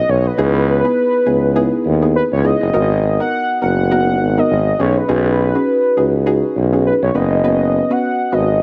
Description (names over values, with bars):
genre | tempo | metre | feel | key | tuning
afrobeats | 102 BPM | 4/4 | swing 58% on 16ths | B major | A4 = 440 Hz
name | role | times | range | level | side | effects
warm velvety synth lead | melody | 0.0-8.6 s | B4 to F#5 | -20 LUFS | equal | chorus, digital delay
clear tuba | bass | 0.1-8.6 s | F#1 to D#2 | -18 LUFS | equal | none
soft round pluck | accompaniment | 0.4-8.6 s | B3 to B4 | -21 LUFS | equal | chorus
room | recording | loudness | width
studio ambience | none | -15 LUFS | mono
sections
0.0-8.6 A section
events
none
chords
0.4 C#m7; 2.7 G#m7; 4.8 B6; 7.1 F#sus4